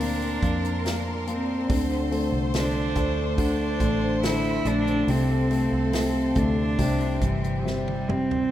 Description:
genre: pop ballad.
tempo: 70 BPM.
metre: 4/4.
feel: straight.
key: unclear.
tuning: A4 = 439 Hz.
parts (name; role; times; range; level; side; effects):
rich cello; melody; 0.0-8.5 s; E3 to E4; -28 LUFS; right 1 dB; none.
rich chamber violin section; second line; 0.0-8.1 s; G4 to C5; -34 LUFS; right 2 dB; none.
felt-muted upright piano; accompaniment; 0.0-8.5 s; C3 to Bb3; -27 LUFS; left 3 dB; none.
warm studio string section; sustained chords; 0.0-8.5 s; G4 to C6; -38 LUFS; left 2 dB; none.
fingerpicked steel-string acoustic guitar; arpeggios; 0.0-8.5 s; Bb2 to Bb4; -38 LUFS; equal; none.
vintage muted fingered electric bass; bass; 0.0-8.5 s; G1 to F2; -29 LUFS; right 1 dB; none.
natural country drum kit; drums; 0.0-8.5 s; hi-hat, kick drum, snare drum, toms; -30 LUFS; right 1 dB; none.
room: moderate lush hall reverb, RT60 2.9 s.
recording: rough home demo mix.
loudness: -22 LUFS.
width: side -12 dB against mid.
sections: 0.0-8.5 A section.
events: drum fill 7.7-8.5.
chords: 0.0 Bbadd9; 1.7 Dm7; 5.1 F/C; 6.8 C.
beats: 0.00 0.85 | 1.69 2.54 3.38 4.23 | 5.08 5.93 6.79 7.65.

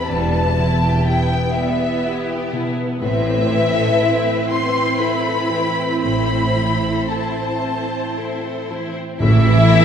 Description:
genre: cinematic, emotional film score for orchestra.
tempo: 56-62 BPM.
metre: 3/4.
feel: rubato.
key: A minor.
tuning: A4 = 442 Hz.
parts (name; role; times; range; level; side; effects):
warm symphonic violin section; melody; 0.0-9.8 s; E5 to C6; -22 LUFS; left 3 dB; none.
rich symphonic violin section; second line; 0.0-9.8 s; G3 to C5; -24 LUFS; left 3 dB; none.
dark grand piano; accompaniment; 0.0-9.8 s; E2 to A4; -22 LUFS; right 1 dB; none.
rich symphonic viola section; accompaniment; 0.0-9.8 s; C3 to A4; -25 LUFS; right 2 dB; none.
rich symphonic cello section; bass; 0.1-9.8 s; E2 to E3; -24 LUFS; right 2 dB; none.
rich symphonic double bass section; bass; 0.1-9.8 s; E1 to A1; -24 LUFS; right 2 dB; none.
silver concert flute; second line; 9.2-9.8 s; E5; -23 LUFS; right 2 dB; none.
mellow French horn section; sustained chords; 9.2-9.8 s; E3; -21 LUFS; left 2 dB; none.
timpani; percussion; 9.2-9.8 s; A2; -19 LUFS; equal; none.
room: wet scoring stage reverb, RT60 1.5 s.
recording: heard from further back in the room.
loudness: -16 LUFS.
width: side -8 dB against mid.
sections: 0.0-9.2 A section.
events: none.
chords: 0.1 Em; 3.0 Amadd9.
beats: | 0.09 1.07 2.05 | 3.02 4.00 4.99 | 6.03 7.10 8.15 | 9.20.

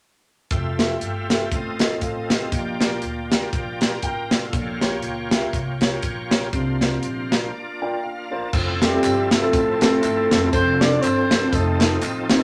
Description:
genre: uptempo gospel.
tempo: 120 BPM.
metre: 4/4.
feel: swing 57% on 8ths.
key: F major.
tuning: A4 = 443 Hz.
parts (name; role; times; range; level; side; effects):
overdriven tonewheel organ; sustained chords; 0.5-12.4 s; F3 to Bb5; -32 LUFS; equal; slow rotary speaker, chorus vibrato.
upright bass; bass; 0.5-12.4 s; F1 to D2; -31 LUFS; equal; none.
crisp fusion drum kit; drums; 0.5-12.4 s; crash cymbal, hi-hat, kick drum, snare drum; -24 LUFS; equal; none.
dark grand piano; accompaniment; 0.8-12.4 s; A2 to G5; -28 LUFS; equal; none.
tambourine and handclaps; percussion; 8.5-12.4 s; none; -37 LUFS; equal; none.
mellow horn section; melody; 8.8-12.4 s; G3 to D5; -22 LUFS; equal; none.
room: moderate studio reverb, RT60 0.6 s.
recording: none.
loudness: -21 LUFS.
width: mono.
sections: 0.5-8.5 A section; 8.5-12.4 B section.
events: tonewheel organ fill 7.0-8.5; break 7.5-8.5; grand piano fill 7.5-8.5.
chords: 0.5 Fmaj9; 1.5 F7/A; 2.5 Bb6; 4.5 Bbm6; 6.5 C9sus4; 8.5 Fmaj7; 10.5 Dm7/F; 11.5 F7.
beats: | 0.51 1.01 1.51 2.02 | 2.52 3.02 3.52 4.02 | 4.52 5.03 5.53 6.03 | 6.53 7.03 7.53 8.03 | 8.53 9.03 9.53 10.03 | 10.53 11.03 11.52 12.02.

